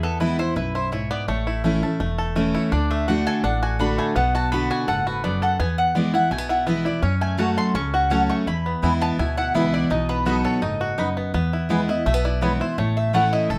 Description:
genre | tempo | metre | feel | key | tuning
bluegrass | 167 BPM | 4/4 | straight | unclear | A4 = 441 Hz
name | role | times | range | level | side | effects
mandolin | melody | 0.0-13.6 s | A4 to C#6 | -28 LUFS | equal | none
picked steel-string acoustic guitar | accompaniment | 0.0-13.6 s | E2 to F#4 | -26 LUFS | equal | none
bluegrass banjo | arpeggios | 0.0-13.6 s | A3 to A4 | -30 LUFS | equal | none
upright bass | bass | 0.0-13.6 s | E1 to F#2 | -29 LUFS | equal | none
mandolin | stabs | 7.4-13.2 s | A3 to B5 | -29 LUFS | equal | none
room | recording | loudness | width
light reverb | none | -22 LUFS | mono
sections
0.0-13.6 A section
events
none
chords
0.0 E; 1.3 A; 2.7 D; 4.2 Bm; 5.6 E; 7.0 F#m; 8.5 E; 9.9 B; 11.3 E; 12.8 A

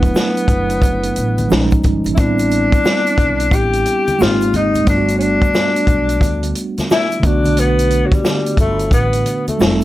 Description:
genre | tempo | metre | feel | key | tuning
hip hop, jazz-hop | 89 BPM | 4/4 | swing 63% on 16ths | unclear | A4 = 441 Hz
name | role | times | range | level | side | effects
breathy tenor saxophone | melody | 0.0-9.8 s | F#3 to G4 | -18 LUFS | left 2 dB | slapback echo
mellow tine electric piano | accompaniment | 0.0-9.8 s | D3 to G4 | -18 LUFS | right 2 dB | medium stereo tremolo
upright bass | bass | 0.0-9.8 s | F1 to D2 | -20 LUFS | equal | none
vintage drum kit | drums | 0.0-9.8 s | hi-hat, kick drum, snare drum | -17 LUFS | equal | vintage 12-bit sampler grit
tube shaker and congas | percussion | 0.0-9.8 s | none | -29 LUFS | left 2 dB | none
room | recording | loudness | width
light reverb | none | -13 LUFS | side -15 dB against mid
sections
0.0-9.8 A section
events
none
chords
0.0 E9sus4; 1.5 Bbm7; 2.2 Am11; 4.2 G#maj9; 4.9 Gmaj9

